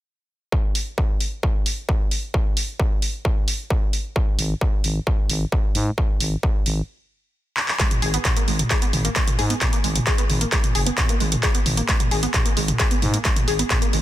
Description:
driving peak-time techno; 132 BPM; 4/4; straight; G# minor; A4 = 441 Hz
electronic kick drum; drums; 0.5-13.8 s; -21 LUFS; equal; distortion
techno drum kit; drums; 0.8-14.0 s; handclaps, hi-hat, toms; -23 LUFS; equal
growling FM bass; bass; 4.4-14.0 s; F#1 to G#2; -23 LUFS; equal; sidechain pumping
tight sequenced synth; riff; 7.8-14.0 s; G#3 to G#4; -27 LUFS; equal; chorus, overdrive, sidechain pumping, digital delay
little or no reverb; dense, heavily limited modern master; -19 LUFS; side -14 dB against mid
0.5-7.8 A section; 7.8-14.0 B section
stop 6.9-7.8; drum fill 7.6
0.5 N.C.; 7.8 G#5

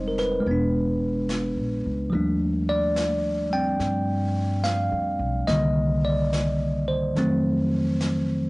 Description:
jazz ballad; 72 BPM; 4/4; swing 66% on 8ths; A4 = 440 Hz
bell-like tine electric piano; accompaniment; 0.0-8.5 s; D3 to G5; -23 LUFS; equal; cassette tape
upright bass; bass; 0.0-8.5 s; E1 to G2; -29 LUFS; equal
jazz brush drum kit; drums; 0.2-8.5 s; brushed snare drum, hi-hat, snare drum; -37 LUFS; left 1 dB
light reverb; home recording on cassette, nothing above 10.5 kHz; -22 LUFS; side -24 dB against mid
0.0-8.5 A section
0.5 E7#11; 2.1 Ebmaj9#11; 5.5 Cm7; 7.2 F7b9

